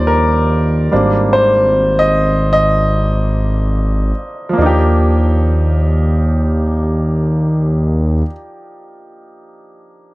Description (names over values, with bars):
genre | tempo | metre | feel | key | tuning
R&B | 74 BPM | 4/4 | swing 63% on 16ths | Eb major | A4 = 440 Hz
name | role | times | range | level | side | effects
clear baby grand piano | accompaniment | 0.0-10.1 s | F3 to Eb5 | -16 LUFS | equal | plate reverb
smooth synth bass | bass | 0.0-8.2 s | Ab1 to Eb2 | -14 LUFS | equal | none
room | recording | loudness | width
moderate studio ambience, RT60 0.5 s | none | -12 LUFS | side -20 dB against mid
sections
0.0-4.6 A section; 4.6-7.8 B section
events
grand piano solo 0.0-4.6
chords
0.0 Ebmaj9; 0.9 Abmaj9#11; 4.6 Ebmaj9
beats
0.51 | 1.32 2.13 2.94 3.75 | 4.56 5.37 6.18 6.99